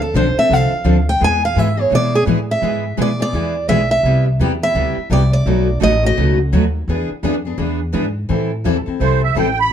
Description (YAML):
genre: acoustic string swing (jazz manouche)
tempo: 169 BPM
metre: 4/4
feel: swing 61% on 8ths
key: A minor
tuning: A4 = 440 Hz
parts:
  - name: picked steel-string acoustic guitar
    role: melody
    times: 0.0-6.4 s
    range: G#4 to G#5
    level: -18 LUFS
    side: right 2 dB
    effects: plate reverb
  - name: upright bass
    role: bass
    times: 0.0-9.7 s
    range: A1 to B2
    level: -18 LUFS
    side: equal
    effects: none
  - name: picked steel-string acoustic guitar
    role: accompaniment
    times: 0.1-9.5 s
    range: B2 to B4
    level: -23 LUFS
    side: right 8 dB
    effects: none
  - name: picked steel-string acoustic guitar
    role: accompaniment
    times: 0.2-9.5 s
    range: B2 to A4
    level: -21 LUFS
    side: left 6 dB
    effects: none
  - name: musette accordion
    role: second line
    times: 9.0-9.7 s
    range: C5 to B5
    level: -17 LUFS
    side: right 6 dB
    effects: none
room: light reverb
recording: dark, warm production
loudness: -14 LUFS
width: side -9 dB against mid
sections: 0.0-8.3 A section; 8.3-9.7 A section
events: steel-string acoustic guitar solo 0.0-8.3; accordion solo 8.3-9.7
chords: 0.0 Dm7; 1.2 E; 4.0 Cmaj7; 5.5 B7; 6.9 E7; 8.3 Am7